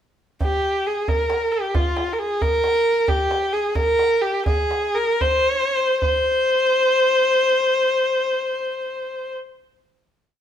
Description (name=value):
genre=Persian modal ensemble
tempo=71-90 BPM (dotted quarters)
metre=6/8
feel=straight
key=C dastgah shur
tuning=A4 = 441 Hz
part: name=clear kamancheh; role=melody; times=0.4-9.3 s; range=F4 to C5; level=-18 LUFS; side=equal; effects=none
part: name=tombak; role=percussion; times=0.4-6.3 s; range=none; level=-24 LUFS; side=right 1 dB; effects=none
room=moderate stone room reverb, RT60 1.0 s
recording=band playing live in one room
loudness=-18 LUFS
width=side -9 dB against mid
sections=0.4-6.0 A section; 6.0-9.4 final note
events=slowing down 3.1-6.0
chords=none